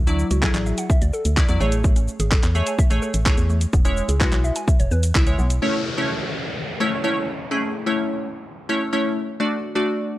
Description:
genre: dance-pop.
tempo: 127 BPM.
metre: 4/4.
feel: straight.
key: A major.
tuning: A4 = 440 Hz.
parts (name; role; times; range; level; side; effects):
hollow square pluck; arpeggios; 0.0-5.5 s; A3 to G#5; -31 LUFS; right 1 dB; chorus, sidechain pumping, analog delay.
organ-like FM bass; bass; 0.0-5.6 s; E1 to E2; -21 LUFS; equal; sidechain pumping.
glassy wavetable pluck; accompaniment; 0.1-10.2 s; F#3 to E5; -23 LUFS; equal; chorus, sidechain pumping.
pop drum kit; drums; 0.1-5.6 s; handclaps, hi-hat, kick drum, shaker; -19 LUFS; equal; none.
downlifter; sound effects; 5.6-9.4 s; none; -30 LUFS; left 1 dB; none.
room: little or no reverb.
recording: dry, gritty hardware recording.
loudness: -18 LUFS.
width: side -16 dB against mid.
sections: 0.0-5.6 A section; 5.6-10.2 B section.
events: none.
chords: 0.0 Dadd9; 1.6 Amaj7; 3.7 E6; 5.6 A; 9.4 D.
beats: 0.43 0.90 1.37 | 1.84 2.32 2.79 3.26 | 3.73 4.21 4.68 5.15 | 5.62 6.09 6.57 7.04 | 7.51 7.99 8.46 8.93 | 9.40 9.88.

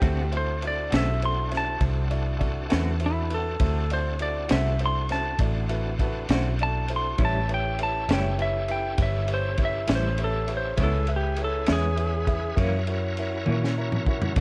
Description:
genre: slow blues.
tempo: 67 BPM (dotted quarters).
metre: 12/8.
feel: straight.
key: unclear.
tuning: A4 = 440 Hz.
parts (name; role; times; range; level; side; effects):
clean lap steel guitar; melody; 0.0-12.6 s; E4 to C6; -31 LUFS; equal; none.
semi-hollow electric guitar; accompaniment; 0.0-14.4 s; F#2 to F#4; -36 LUFS; equal; tremolo.
warm grand piano; accompaniment; 0.0-14.4 s; D4 to A#5; -36 LUFS; equal; none.
bright tonewheel organ; sustained chords; 0.0-14.4 s; C4 to B4; -40 LUFS; equal; slow rotary speaker, chorus vibrato.
vintage muted fingered electric bass; bass; 0.0-14.4 s; F#1 to B2; -29 LUFS; equal; none.
crunchy breakbeat drum kit; drums; 0.0-14.4 s; kick drum, ride cymbal, snare drum, toms; -31 LUFS; equal; none.
room: little or no reverb.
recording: dark, warm production.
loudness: -25 LUFS.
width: mono.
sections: 0.0-14.4 A section.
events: electric slide guitar solo 0.0-14.4; drum fill 13.5-14.4; grand piano fill 13.5-14.4.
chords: 0.0 D7; 7.2 A7; 10.8 C#m7; 12.6 F#7.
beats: | 0.01 0.91 1.81 2.71 | 3.60 4.50 5.40 6.30 | 7.20 8.09 8.99 9.89 | 10.79 11.68 12.58 13.48 | 14.38.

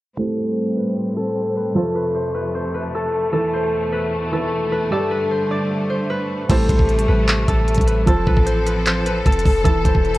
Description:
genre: hip hop, trap.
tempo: 152 BPM.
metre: 4/4.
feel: half-time.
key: A minor.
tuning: A4 = 440 Hz.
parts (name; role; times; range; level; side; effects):
concert harp; melody; 0.2-10.2 s; A4 to D5; -22 LUFS; left 2 dB; low-pass filter, digital delay.
felt-muted upright piano; accompaniment; 0.2-10.2 s; E3 to D5; -25 LUFS; right 3 dB; low-pass filter.
clear symphonic string section; sustained chords; 0.2-10.2 s; E2 to A4; -24 LUFS; equal; low-pass filter.
warm 808-style bass; bass; 6.5-10.2 s; E1 to A1; -20 LUFS; equal; none.
trap drum kit; drums; 6.5-10.2 s; crash cymbal, handclaps, hi-hat, kick drum; -18 LUFS; equal; none.
room: studio reverb.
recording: worn, warbling old tape, cassette tape, warbly pitch drift.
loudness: -17 LUFS.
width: side -17 dB against mid.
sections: 0.2-6.5 A section; 6.5-10.2 B section.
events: filter sweep 0.2-6.5.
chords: 0.2 Am7; 1.8 F; 3.3 Esus4; 4.9 Gsus2; 6.5 Am7; 8.1 F; 9.7 Esus4.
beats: | 0.18 0.57 0.97 1.36 | 1.76 2.15 2.55 2.94 | 3.34 3.73 4.13 4.52 | 4.92 5.31 5.71 6.10 | 6.50 6.89 7.28 7.68 | 8.07 8.47 8.86 9.26 | 9.65 10.05.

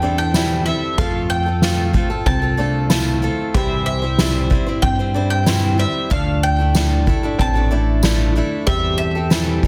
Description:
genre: indie folk with a building arrangement.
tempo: 94 BPM.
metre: 4/4.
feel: straight.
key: C major.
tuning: A4 = 438 Hz.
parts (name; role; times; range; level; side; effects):
bowl-back mandolin; melody; 0.0-9.6 s; E5 to A5; -26 LUFS; equal; slapback echo.
picked steel-string acoustic guitar; accompaniment; 0.0-9.7 s; C3 to C5; -26 LUFS; equal; none.
warm upright piano; arpeggios; 0.0-9.7 s; C4 to A4; -28 LUFS; equal; none.
upright bass; bass; 0.0-9.7 s; A1 to G2; -22 LUFS; equal; none.
soft-mallet drum kit; drums; 0.3-9.7 s; kick drum, snare drum; -23 LUFS; equal; none.
tambourine; percussion; 0.3-9.5 s; none; -33 LUFS; equal; none.
room: light reverb.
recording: dense, heavily limited modern master.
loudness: -18 LUFS.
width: mono.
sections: 0.0-9.7 A section.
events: none.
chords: 0.0 Am7/E; 1.0 F; 3.5 C; 6.1 Dmadd9; 8.7 Am7/E.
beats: 0.35 | 0.99 1.63 2.27 2.91 | 3.55 4.19 4.83 5.47 | 6.11 6.75 7.39 8.03 | 8.67 9.31.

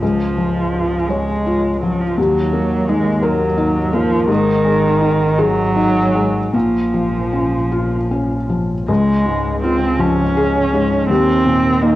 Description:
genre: neoclassical piano and strings.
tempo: 50-58 BPM (dotted quarters).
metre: 6/8.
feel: rubato.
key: Db major.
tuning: A4 = 440 Hz.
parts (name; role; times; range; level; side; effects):
muted cello; second line; 0.0-12.0 s; Eb3 to Db4; -17 LUFS; right 2 dB; cassette tape.
felt-muted upright piano; accompaniment; 0.0-12.0 s; Db2 to Db5; -17 LUFS; left 2 dB; cassette tape.
muted double bass; bass; 0.0-12.0 s; Ab1 to Eb2; -24 LUFS; equal; none.
room: moderate spring reverb, RT60 1.9 s, studio ambience.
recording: home recording on cassette.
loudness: -14 LUFS.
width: side -15 dB against mid.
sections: 0.0-8.9 A section; 8.9-12.0 B section.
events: none.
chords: 0.0 Db; 2.2 Ebm; 4.3 Ab5; 6.5 Bbm; 8.9 Db; 11.1 Eb5.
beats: | 0.01 1.09 | 2.17 3.23 | 4.29 5.39 | 6.54 7.72 | 8.89 9.99 | 11.10.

